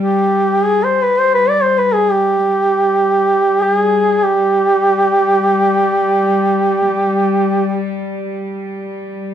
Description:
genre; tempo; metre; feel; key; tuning
caucasian folk, Caucasian lament; free time; none; none; G major; A4 = 439 Hz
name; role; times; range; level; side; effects
warm duduk; melody; 0.0-7.9 s; G4 to D5; -12 LUFS; right 1 dB; none
dark studio cello section; drone; 0.0-9.3 s; G3; -20 LUFS; left 3 dB; none
room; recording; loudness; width
moderate large studio reverb, RT60 0.9 s; band playing live in one room; -12 LUFS; side -9 dB against mid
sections
0.0-9.3 A section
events
none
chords
none

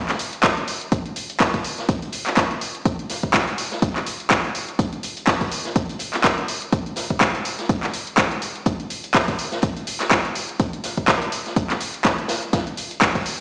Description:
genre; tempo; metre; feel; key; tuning
house; 124 BPM; 4/4; swing 56% on 16ths; none; none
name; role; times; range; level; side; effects
house drum kit; drums; 0.1-13.4 s; handclaps, hi-hat; -24 LUFS; equal; overdrive, small room ambience
open jazz drum kit; drums; 0.1-13.4 s; hi-hat, snare drum; -32 LUFS; equal; high-pass filter on hats, small room ambience, high-pass filter on snare, high-pass filter on room
electronic kick drum; drums; 0.4-13.2 s; none; -25 LUFS; equal; overdrive, small room ambience
room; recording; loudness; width
moderate digital room reverb, RT60 1.1 s, small room ambience; played on a big sound system in a bare room, stone room reverb, small speaker sound; -22 LUFS; mono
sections
0.0-13.4 A section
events
none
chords
none

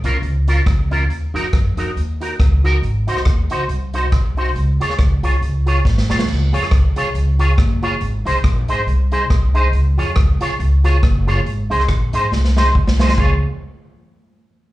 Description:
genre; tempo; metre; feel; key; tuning
ska; 139 BPM; 4/4; swing 57% on 8ths; Db major; A4 = 439 Hz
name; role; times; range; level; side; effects
electric guitar with an envelope filter; accompaniment; 0.0-13.3 s; Db4 to Db5; -21 LUFS; right 1 dB; ensemble chorus, plate reverb, slapback echo
upright bass; bass; 0.0-13.4 s; Gb1 to Gb2; -17 LUFS; equal; none
street-band drum kit; drums; 0.0-13.3 s; crash cymbal, hi-hat, kick drum, rim click, snare drum; -18 LUFS; equal; vintage 12-bit sampler grit
room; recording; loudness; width
light reverb; live gig heard through the venue's PA, club reverb; -14 LUFS; side -16 dB against mid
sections
0.0-6.3 A section; 6.3-13.2 B section; 13.2-14.7 C section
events
drum fill 5.8-6.3, 12.3-13.2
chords
0.0 Bbm; 1.1 Ebm; 2.8 Ab7; 4.6 Db; 8.0 Ab; 9.7 Db; 11.5 Ab; 13.2 Db

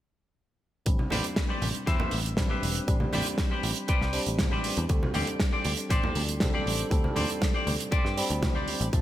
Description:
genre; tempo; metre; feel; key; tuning
nu-disco, nu disco; 119 BPM; 4/4; straight; A minor; A4 = 440 Hz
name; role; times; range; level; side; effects
barky tine electric piano; accompaniment; 0.9-9.0 s; F3 to B5; -34 LUFS; right 1 dB; overdrive, medium tremolo, sidechain pumping, low-pass filter, digital delay
picked electric bass; bass; 0.9-9.0 s; E1 to G2; -31 LUFS; equal; none
damped 70s drum kit; drums; 0.9-9.0 s; hi-hat, snare drum; -32 LUFS; right 2 dB; gated reverb
electronic kick drum; drums; 0.9-9.0 s; none; -27 LUFS; equal; none
congas; percussion; 1.0-8.5 s; none; -36 LUFS; right 1 dB; none
clean electric guitar; riff; 1.1-8.9 s; G4 to E5; -33 LUFS; left 2 dB; wide subtle chorus, vintage 12-bit sampler grit, low-pass filter, digital delay
room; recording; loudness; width
light reverb, small room ambience; bright 1980s-style digital production; -25 LUFS; side -13 dB against mid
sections
0.9-9.0 A section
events
filter sweep on tine electric piano 0.9-9.0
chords
0.9 Am11; 4.9 D7sus4

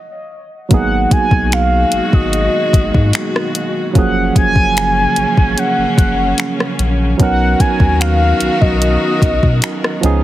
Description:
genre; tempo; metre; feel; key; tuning
contemporary R&B; 74 BPM; 4/4; straight; unclear; A4 = 440 Hz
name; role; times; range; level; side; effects
mellow horn-like synth lead; melody; 0.0-10.0 s; Eb5 to Ab5; -18 LUFS; equal; chorus, tape echo
barky tine electric piano; accompaniment; 0.7-10.2 s; F3 to A#4; -19 LUFS; right 6 dB; none
clear studio string section; sustained chords; 0.7-10.2 s; Cb3 to A#4; -21 LUFS; left 2 dB; none
warm sub bass; bass; 0.7-10.2 s; Gb1 to B2; -17 LUFS; left 1 dB; none
smooth R&B drum kit; drums; 0.7-10.2 s; finger snaps, hi-hat, kick drum, rim click; -14 LUFS; left 1 dB; none
room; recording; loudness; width
little or no reverb; heavily compressed radio sound; -11 LUFS; side -14 dB against mid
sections
0.7-10.2 A section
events
stop 0.0-0.7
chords
0.0 N.C.; 0.7 Abm7; 4.0 Gbmaj7; 7.2 Bmaj7

